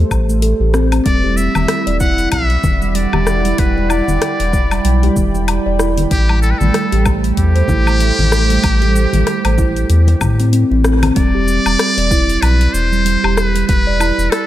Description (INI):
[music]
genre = organic downtempo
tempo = 95 BPM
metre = 4/4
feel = swing 58% on 16ths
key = unclear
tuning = A4 = 440 Hz
[part]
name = warm analog pad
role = sustained chords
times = 0.0-11.2 s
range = A3 to B5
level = -23 LUFS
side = right 1 dB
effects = chorus, sidechain pumping
[part]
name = round analog bass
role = bass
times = 0.0-14.3 s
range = E1 to A2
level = -15 LUFS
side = equal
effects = sidechain pumping
[part]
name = afro-pop drum kit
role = drums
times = 0.1-14.5 s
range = hi-hat, rim click, shaker, woodblock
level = -22 LUFS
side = left 3 dB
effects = none
[part]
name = electronic kick drum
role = drums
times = 0.1-13.8 s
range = none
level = -17 LUFS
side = equal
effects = none
[part]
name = steel tongue drum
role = arpeggios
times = 0.3-14.2 s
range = G3 to D5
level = -19 LUFS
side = right 3 dB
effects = tape echo
[part]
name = trumpet with metal mute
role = melody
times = 1.1-14.5 s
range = G4 to F#5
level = -19 LUFS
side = equal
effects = vintage 12-bit sampler grit, tape echo
[part]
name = congas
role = percussion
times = 1.2-11.1 s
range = none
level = -24 LUFS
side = left 4 dB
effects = none
[sound]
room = digital ambience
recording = none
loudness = -12 LUFS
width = side -13 dB against mid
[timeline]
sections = 0.0-11.2 A section; 11.2-14.5 B section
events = band accent 10.8-11.2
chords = 0.0 Am7; 1.1 Em7; 6.1 Am7; 11.2 Em7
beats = 0.43 | 1.06 1.69 2.32 2.95 | 3.59 4.22 4.85 5.48 | 6.11 6.74 7.38 8.01 | 8.64 9.27 9.90 10.53 | 11.16 11.80 12.43 13.06 | 13.69 14.32